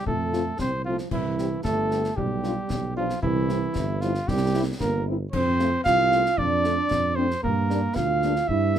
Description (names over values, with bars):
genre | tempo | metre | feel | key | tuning
military-style march for wind band | 114 BPM | 2/4 | straight | F major | A4 = 440 Hz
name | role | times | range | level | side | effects
mellow cornet | melody | 0.0-8.8 s | E4 to F5 | -26 LUFS | equal | none
warm euphonium | second line | 0.0-8.8 s | E3 to F4 | -28 LUFS | right 4 dB | none
mellow tuba | bass | 0.1-8.8 s | G1 to G2 | -27 LUFS | right 2 dB | none
concert bass drum, concert snare drum and clash cymbals | drums | 0.1-8.8 s | none | -33 LUFS | left 3 dB | none
mellow French horn section | accompaniment | 0.3-8.8 s | G3 to G4 | -30 LUFS | left 4 dB | none
room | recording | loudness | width
light reverb | close, detailed microphones | -22 LUFS | side -9 dB against mid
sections
0.0-8.8 A section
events
none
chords
0.0 F; 1.1 C; 2.2 G7/B; 3.2 C; 5.3 F; 6.4 Dm/F; 7.4 Gm